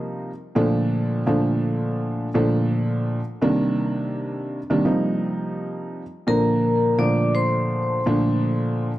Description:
hip hop; 84 BPM; 4/4; swing 59% on 16ths; A4 = 440 Hz
dark upright piano; accompaniment; 0.0-8.9 s; Bb2 to Eb4; -20 LUFS; equal
vibraphone with medium hard mallets; melody; 6.3-8.4 s; Bb4 to D6; -24 LUFS; left 2 dB; analog delay
light reverb, small room ambience; dark, warm production; -20 LUFS; side -15 dB against mid
0.0-9.0 A section
0.0 F9sus4; 0.6 Bbmaj7; 3.4 Cm9; 4.8 F9sus4; 6.3 Bbmaj7
| 0.56 1.28 1.99 2.71 | 3.42 4.13 4.85 5.56 | 6.28 6.99 7.71 8.42

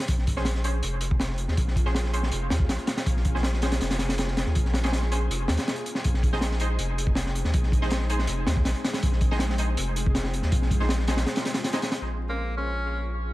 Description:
drum and bass, jungle; 161 BPM; 4/4; straight; Bb minor; A4 = 440 Hz
crunchy breakbeat drum kit; drums; 0.0-12.0 s; hi-hat, kick drum, snare drum; -26 LUFS; equal
ethereal airy pad; sustained chords; 0.8-13.3 s; Ab3 to Ab4; -36 LUFS; left 1 dB; ensemble chorus, built-in reverb
saturated sub bass; bass; 0.1-13.3 s; F1 to Eb2; -27 LUFS; equal
orchestra-hit-like synth stab; stabs; 0.4-12.7 s; Db4 to C5; -35 LUFS; right 1 dB; built-in reverb, dub echo
clear tenor saxophone; melody; 12.3-13.1 s; Bb3 to Db4; -31 LUFS; equal; dub echo
studio reverb; echo-heavy mix, vinyl crackle; -23 LUFS; side -17 dB against mid
0.0-12.0 A section; 12.0-13.3 B section
break 11.3-12.0; filter sweep on ambient pad 12.0-13.3; filter sweep on synth stab 12.0-13.3
0.1 Bbm7; 6.0 Ab; 12.0 Bbm7
| 0.09 0.46 0.83 1.20 | 1.58 1.95 2.32 2.69 | 3.07 3.44 3.81 4.18 | 4.56 4.93 5.30 5.67 | 6.05 6.42 6.79 7.17 | 7.54 7.91 8.28 8.66 | 9.03 9.40 9.78 10.15 | 10.52 10.89 11.27 11.64 | 12.01 12.38 12.76 13.13

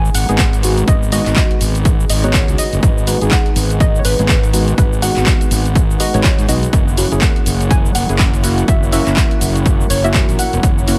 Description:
deep house; 123 BPM; 4/4; swing 59% on 16ths; G# minor; A4 = 440 Hz
warm analog pad; sustained chords; 0.0-11.0 s; D#4 to F#5; -31 LUFS; equal; chorus, sidechain pumping
deep mellow chord stab; stabs; 0.0-11.0 s; G#3 to G#4; -23 LUFS; equal; chorus, sidechain pumping, dub echo
fuzz fingered electric bass; bass; 0.0-10.9 s; E1 to G#2; -20 LUFS; equal; overdrive, sidechain pumping
soft round pluck; melody; 0.1-11.0 s; B4 to G#5; -26 LUFS; equal; subtle chorus, dub echo
punchy analog drum machine; drums; 0.1-11.0 s; cabasa, handclaps, hi-hat; -23 LUFS; equal; overdrive
electronic kick drum; drums; 0.4-10.7 s; -17 LUFS; equal; overdrive
digital ambience; -14 LUFS; mono
0.0-11.0 A section
0.0 G#m7; 6.7 F#7
0.39 | 0.88 1.36 1.85 2.34 | 2.83 3.32 3.80 4.29 | 4.78 5.27 5.75 6.24 | 6.73 7.22 7.71 8.19 | 8.68 9.17 9.66 10.14 | 10.63

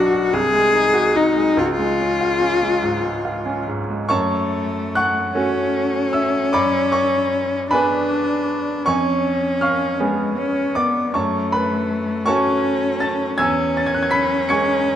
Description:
classical, romantic duo for cello and grand piano; 45-54 BPM (dotted quarters); 6/8; rubato; F# minor; A4 = 440 Hz
rich cello; melody; 0.0-15.0 s; G#3 to G#4; -20 LUFS; left 2 dB
clear baby grand piano; accompaniment; 0.0-15.0 s; B1 to C#7; -20 LUFS; right 1 dB
moderate recital hall reverb, RT60 1.4 s; close, detailed microphones; -17 LUFS; side -10 dB against mid
0.0-4.1 A section; 4.1-15.0 B section
0.3 G#7/B#; 1.6 C#; 4.1 F#m; 6.5 G#m7b5/F#; 8.9 C#7/E#; 11.1 F#m; 13.4 C#m/E
0.33 | 1.57 2.83 | 4.09 5.36 | 6.53 7.71 | 8.86 9.99 | 11.14 12.27 | 13.38 14.50

